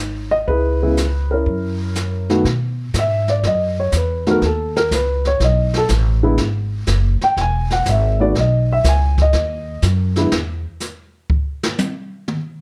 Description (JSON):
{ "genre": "jazz piano trio", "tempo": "122 BPM", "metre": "4/4", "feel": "swing 68% on 8ths", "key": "B mixolydian", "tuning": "A4 = 438 Hz", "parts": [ { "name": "dark upright piano", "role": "melody", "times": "0.0-10.3 s", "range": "C#3 to G#5", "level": "-21 LUFS", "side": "equal", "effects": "none" }, { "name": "upright bass", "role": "bass", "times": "0.0-10.6 s", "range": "E1 to B2", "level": "-21 LUFS", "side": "equal", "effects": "none" }, { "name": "jazz brush drum kit", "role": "drums", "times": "0.5-12.4 s", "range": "brushed snare drum, hi-hat, kick drum, snare drum, toms", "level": "-25 LUFS", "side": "equal", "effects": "none" } ], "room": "light reverb", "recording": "none", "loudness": "-18 LUFS", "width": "mono", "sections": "0.0-2.5 A section; 2.5-12.6 B section", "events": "upright piano solo 2.5-12.6; drum solo 10.3-12.6", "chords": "0.5 C#m7; 1.5 F#7; 2.5 B7; 6.4 E; 8.4 B; 10.3 N.C.", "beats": "| 0.48 0.98 1.47 1.96 | 2.45 2.94 3.44 3.93 | 4.42 4.91 5.40 5.90 | 6.39 6.88 7.37 7.86 | 8.35 8.85 9.34 9.83 | 10.32 10.81 11.30 11.79 | 12.28" }